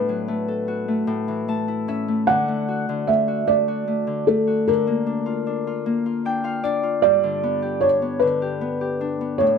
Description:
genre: children's music, lullaby.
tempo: 50 BPM (dotted quarters).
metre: 6/8.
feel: straight.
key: unclear.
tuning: A4 = 440 Hz.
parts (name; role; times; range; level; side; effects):
felt-muted upright piano; melody; 0.0-9.6 s; A4 to F#5; -21 LUFS; right 2 dB; none.
Celtic harp; accompaniment; 0.0-9.6 s; G2 to A5; -23 LUFS; left 3 dB; none.
room: moderate studio ambience, RT60 0.5 s.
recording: none.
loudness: -20 LUFS.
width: side -6 dB against mid.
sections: 0.0-9.6 A section.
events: harp fill 1.1-2.3, 5.9-7.0.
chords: 0.0 F#madd11/A; 1.1 A; 2.3 D; 4.7 Bb/D; 7.0 G.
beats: 1.08 | 2.28 3.48 | 4.67 5.86 | 7.04 8.21 | 9.40.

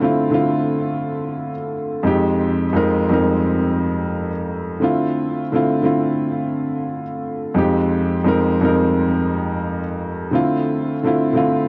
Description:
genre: hip hop.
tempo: 87 BPM.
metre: 4/4.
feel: swing 60% on 16ths.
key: unclear.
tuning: A4 = 441 Hz.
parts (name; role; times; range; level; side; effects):
dark concert grand piano; solo; 0.0-11.7 s; F2 to Bb4; -20 LUFS; equal; cassette tape, high-pass filter, low-pass filter, digital delay.
room: light reverb.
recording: dark, warm production.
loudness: -20 LUFS.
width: mono.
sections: 0.0-11.7 A section.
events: none.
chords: 0.0 Dm7; 2.1 Fm7; 4.8 Dm7; 7.6 Fm7; 10.3 Dm7.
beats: 0.67 1.36 | 2.05 2.74 3.43 4.12 | 4.81 5.50 6.19 6.88 | 7.57 8.26 8.95 9.64 | 10.33 11.02.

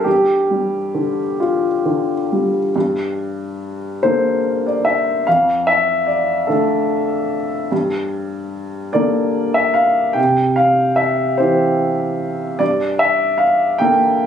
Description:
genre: neoclassical minimalist piano.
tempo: 49 BPM (dotted quarters).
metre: 6/8.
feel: rubato.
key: G dorian.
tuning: A4 = 440 Hz.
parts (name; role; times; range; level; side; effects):
warm upright piano; solo; 0.0-14.3 s; F2 to G5; -15 LUFS; equal; none.
room: light reverb.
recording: recorded on a phone in the room, club reverb, compression.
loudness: -15 LUFS.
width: side -8 dB against mid.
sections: 0.0-2.7 A section; 2.7-14.3 B section.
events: none.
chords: 0.1 G5; 2.7 Gmadd9; 5.3 Dm/F; 7.7 Gmadd9; 10.2 C; 12.6 Gmadd9.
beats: | 0.05 1.39 | 2.75 4.01 | 5.26 6.49 | 7.71 8.94 | 10.17 11.39 | 12.61 13.81.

